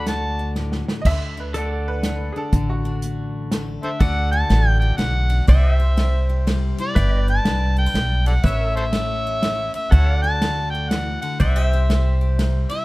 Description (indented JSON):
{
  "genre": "honky-tonk and classic country",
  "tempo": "122 BPM",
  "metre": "3/4",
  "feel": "swing 63% on 8ths",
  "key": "D mixolydian",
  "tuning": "A4 = 438 Hz",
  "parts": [
    { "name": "overdriven harmonica", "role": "melody", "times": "0.0-0.6, 3.8-12.8 s", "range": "A4 to A5", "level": "-24 LUFS", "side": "equal", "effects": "none" },
    { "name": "picked steel-string acoustic guitar", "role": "accompaniment", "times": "0.0-12.8 s", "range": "A2 to C#5", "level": "-30 LUFS", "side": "left 3 dB", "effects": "none" },
    { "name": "pedal steel guitar", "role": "sustained chords", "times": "0.0-12.8 s", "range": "A4 to G5", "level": "-31 LUFS", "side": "equal", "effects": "lush chorus" },
    { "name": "upright bass", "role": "bass", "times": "0.0-12.6 s", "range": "G1 to D2", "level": "-20 LUFS", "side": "equal", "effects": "none" },
    { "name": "natural country drum kit", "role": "drums", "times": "0.1-12.8 s", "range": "crash cymbal, hi-hat, kick drum, ride cymbal, snare drum", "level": "-21 LUFS", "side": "equal", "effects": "none" },
    { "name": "bright upright piano", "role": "second line", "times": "1.0-3.7 s", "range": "F#4 to E5", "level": "-30 LUFS", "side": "right 2 dB", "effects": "none" }
  ],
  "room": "small room ambience",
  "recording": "rough home demo mix",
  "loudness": "-17 LUFS",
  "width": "side -20 dB against mid",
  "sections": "0.0-1.1 A section; 1.1-4.0 B section; 4.0-12.8 C section",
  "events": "harmonica solo 0.0-1.1; drum fill 0.6-1.1",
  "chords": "0.0 D; 5.5 C; 7.0 G; 8.4 A; 9.9 D; 11.4 C"
}